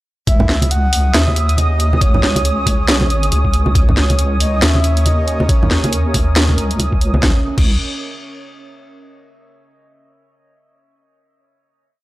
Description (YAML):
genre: deep dubstep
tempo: 138 BPM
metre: 4/4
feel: swing 59% on 16ths, half-time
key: C# dorian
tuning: A4 = 440 Hz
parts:
  - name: breathy flute-like synth lead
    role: melody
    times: 0.3-5.9 s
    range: C#5 to F#5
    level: -25 LUFS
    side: equal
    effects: lush chorus, dub echo
  - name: deep dark ambient pad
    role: sustained chords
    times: 0.9-7.4 s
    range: C#4 to C#5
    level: -27 LUFS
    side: right 2 dB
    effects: chorus, built-in reverb
  - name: deep soft wobble bass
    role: bass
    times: 0.3-7.8 s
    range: C#2 to D#2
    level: -16 LUFS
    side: equal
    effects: chorus
  - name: electronic kick drum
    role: drums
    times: 0.3-7.6 s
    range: none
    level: -15 LUFS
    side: equal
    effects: small room ambience
  - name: garage drum kit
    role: drums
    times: 0.3-7.6 s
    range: crash cymbal, hi-hat, snare drum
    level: -18 LUFS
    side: equal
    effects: small room ambience
  - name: flickering grainy texture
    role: texture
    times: 1.0-7.2 s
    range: D#6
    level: -25 LUFS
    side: right 1 dB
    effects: built-in reverb
  - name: congas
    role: percussion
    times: 0.4-7.2 s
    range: none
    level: -21 LUFS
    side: right 1 dB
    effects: none
room: little or no reverb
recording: dry, gritty hardware recording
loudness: -12 LUFS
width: side -17 dB against mid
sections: 0.3-7.2 drop; 7.2-9.0 final chord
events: drop 0.3-7.2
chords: 0.3 C#madd9; 7.2 C#sus2